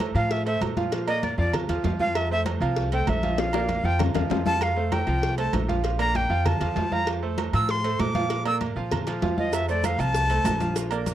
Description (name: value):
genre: latin, salsa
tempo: 195 BPM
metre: 4/4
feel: straight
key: F major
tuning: A4 = 437 Hz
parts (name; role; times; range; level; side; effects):
- bright grand piano; accompaniment; 0.0-11.1 s; F3 to F5; -29 LUFS; right 5 dB; none
- congas; percussion; 0.0-11.1 s; none; -32 LUFS; left 2 dB; none
- cowbell and bongos; percussion; 0.0-11.1 s; none; -33 LUFS; left 6 dB; none
- timbales and agogo bells; percussion; 0.0-11.1 s; none; -34 LUFS; right 10 dB; none
- upright bass; bass; 0.1-11.1 s; Bb1 to Bb2; -27 LUFS; equal; none
- breathy bright jazz flute; melody; 0.2-10.8 s; D5 to E6; -26 LUFS; equal; none
- maracas; percussion; 9.5-11.1 s; none; -41 LUFS; right 30 dB; none
room: little or no reverb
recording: dry, close 1970s-style studio recording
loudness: -22 LUFS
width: side -12 dB against mid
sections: 0.0-11.1 A section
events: flute solo 0.0-11.1; drum fill 3.4-4.6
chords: 0.0 F; 0.9 Bb; 2.2 Fmaj7; 3.4 Bb; 4.6 F; 5.8 Bb6; 7.1 F; 8.3 Bb; 9.5 F